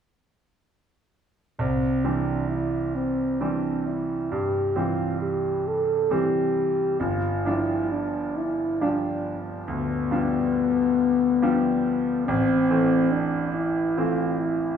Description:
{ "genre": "classical, romantic duo for French horn and grand piano", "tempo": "45 BPM (dotted quarters)", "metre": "12/8", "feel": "rubato", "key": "C major", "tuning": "A4 = 440 Hz", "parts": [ { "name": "mellow French horn", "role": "melody", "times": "1.6-14.8 s", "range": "B3 to A4", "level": "-24 LUFS", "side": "left 2 dB", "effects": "none" }, { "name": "bright concert grand piano", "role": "accompaniment", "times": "1.6-14.8 s", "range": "G1 to D4", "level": "-26 LUFS", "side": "right 2 dB", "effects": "none" } ], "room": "wet stone room reverb, RT60 1.1 s", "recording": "heard from further back in the room", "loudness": "-22 LUFS", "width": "side -8 dB against mid", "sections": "1.6-14.8 A section", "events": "none", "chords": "1.6 C; 7.0 G7; 12.3 Am" }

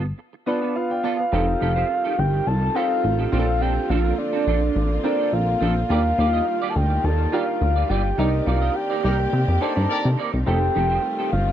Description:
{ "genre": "funk", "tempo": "105 BPM", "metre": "4/4", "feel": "straight", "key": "unclear", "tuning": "A4 = 440 Hz", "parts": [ { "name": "semi-hollow electric guitar", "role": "riff", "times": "0.0-11.5 s", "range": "B3 to Eb5", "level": "-30 LUFS", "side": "right 9 dB", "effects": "ensemble chorus" }, { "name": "plucky analog bass", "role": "bass", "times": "0.0-11.5 s", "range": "F1 to C3", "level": "-21 LUFS", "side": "equal", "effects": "none" }, { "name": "soft octave-layered synth lead", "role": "melody", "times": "0.5-11.5 s", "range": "D5 to A5", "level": "-24 LUFS", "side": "right 1 dB", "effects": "chorus, phaser" }, { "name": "warm grand piano", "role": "accompaniment", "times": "0.5-11.2 s", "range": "B3 to A5", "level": "-28 LUFS", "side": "left 1 dB", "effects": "none" }, { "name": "warm studio string section", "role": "sustained chords", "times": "1.3-11.5 s", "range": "D3 to D5", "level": "-30 LUFS", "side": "left 2 dB", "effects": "none" }, { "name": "clear horn section", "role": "second line", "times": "9.0-10.1 s", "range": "Eb4 to D5", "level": "-29 LUFS", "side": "left 4 dB", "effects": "none" } ], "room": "small room ambience", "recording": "dry, close 1970s-style studio recording", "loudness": "-19 LUFS", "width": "side -10 dB against mid", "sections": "0.0-1.3 A section; 1.3-11.5 B section", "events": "band accent 8.2-10.5", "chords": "0.0 G9; 1.3 F9; 3.3 Bbmaj9; 5.9 Ebmaj9; 8.2 Cm9; 10.5 F9" }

